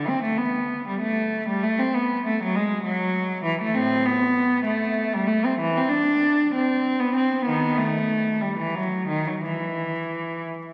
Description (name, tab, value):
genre	classical, baroque-style suite movement for unaccompanied cello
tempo	60-67 BPM (dotted quarters)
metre	6/8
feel	rubato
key	E minor from 3.8 s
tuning	A4 = 440 Hz
part	rich cello	solo	0.0-10.4 s	A2 to D4	-24 LUFS	equal	none
room	wet church reverb, RT60 2.6 s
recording	very old 78 rpm record, vinyl crackle, nothing above 10.4 kHz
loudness	-24 LUFS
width	mono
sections	0.0-10.7 A section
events	none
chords	none